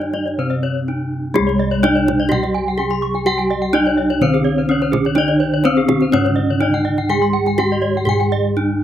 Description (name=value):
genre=Balinese gamelan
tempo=126 BPM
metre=4/4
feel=straight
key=C pelog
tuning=A4 = 440 Hz
part: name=gamelan-type bronze metallophone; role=melody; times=0.0-8.8 s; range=Ab3-40c to Ab4-40c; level=-18 LUFS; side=equal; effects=none
part: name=gamelan-type bronze metallophone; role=accompaniment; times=0.0-8.8 s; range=C3 to Ab3-40c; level=-25 LUFS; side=equal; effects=slapback echo
part: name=gamelan-type bronze metallophone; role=arpeggios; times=0.0-8.4 s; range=G4-45c to Db6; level=-25 LUFS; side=right 8 dB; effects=slapback echo
part: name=gamelan-type bossed gongs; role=bass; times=0.0-8.8 s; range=C2 to Ab4-40c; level=-22 LUFS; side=left 1 dB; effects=none
part: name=kendang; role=percussion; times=0.0-8.3 s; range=none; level=-24 LUFS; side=right 5 dB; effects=none
part: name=gamelan-type bronze metallophone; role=arpeggios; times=0.1-8.2 s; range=Ab4-40c to C6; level=-22 LUFS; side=left 6 dB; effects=slapback echo
room=little or no reverb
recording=recorded outdoors, with no room sound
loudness=-15 LUFS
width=side -10 dB against mid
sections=0.0-1.4 A section; 1.4-8.8 B section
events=none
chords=none